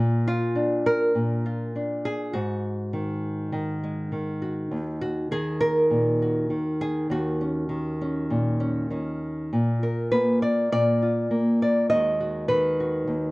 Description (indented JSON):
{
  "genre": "folk, solo fingerstyle acoustic guitar",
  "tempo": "101 BPM",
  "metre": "4/4",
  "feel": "straight",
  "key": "Eb minor",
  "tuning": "A4 = 441 Hz",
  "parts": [
    { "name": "nylon-string guitar", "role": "solo", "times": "0.0-13.3 s", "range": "Eb2 to Eb5", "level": "-22 LUFS", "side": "equal", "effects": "none" }
  ],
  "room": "moderate studio reverb, RT60 0.8 s",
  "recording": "worn, warbling old tape, cassette tape, warbly pitch drift",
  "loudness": "-22 LUFS",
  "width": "side -22 dB against mid",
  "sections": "0.0-13.3 A section",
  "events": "none",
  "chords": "0.0 Bb; 2.3 Ab5; 4.7 Ebm7; 9.5 Bb; 11.9 Abm7",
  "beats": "0.56 1.16 1.75 | 2.35 2.94 3.54 4.13 | 4.72 5.31 5.91 6.51 | 7.10 7.70 8.30 8.90 | 9.51 10.11 10.70 11.30 | 11.90 12.49 13.08"
}